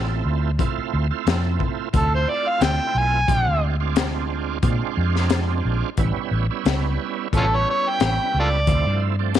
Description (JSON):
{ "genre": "straight-eighth soul blues", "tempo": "89 BPM", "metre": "4/4", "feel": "swing 54% on 16ths", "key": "D dorian", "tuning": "A4 = 441 Hz", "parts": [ { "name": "bright tonewheel organ", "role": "accompaniment", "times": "0.0-9.4 s", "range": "F3 to F4", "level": "-27 LUFS", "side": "right 14 dB", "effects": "overdrive, chorus vibrato, slow rotary speaker" }, { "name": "vintage muted fingered electric bass", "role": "bass", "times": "0.0-9.4 s", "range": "A1 to Bb2", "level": "-22 LUFS", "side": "equal", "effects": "none" }, { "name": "crunchy breakbeat drum kit", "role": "drums", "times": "0.6-9.4 s", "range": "hi-hat, kick drum, snare drum", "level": "-24 LUFS", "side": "left 4 dB", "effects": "none" }, { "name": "overdriven harmonica", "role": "melody", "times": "2.0-9.0 s", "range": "C#4 to G#5", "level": "-22 LUFS", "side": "equal", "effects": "none" } ], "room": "light reverb, studio ambience", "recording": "1960s-style stereo", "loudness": "-19 LUFS", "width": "side -10 dB against mid", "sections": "0.0-9.4 A section", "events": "none", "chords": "0.0 Dm7; 3.3 Bb7; 6.0 A7; 8.7 Dm7", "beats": "| 0.59 1.26 1.94 2.61 | 3.29 3.96 4.63 5.30 | 5.98 6.65 7.33 8.00 | 8.67 9.35" }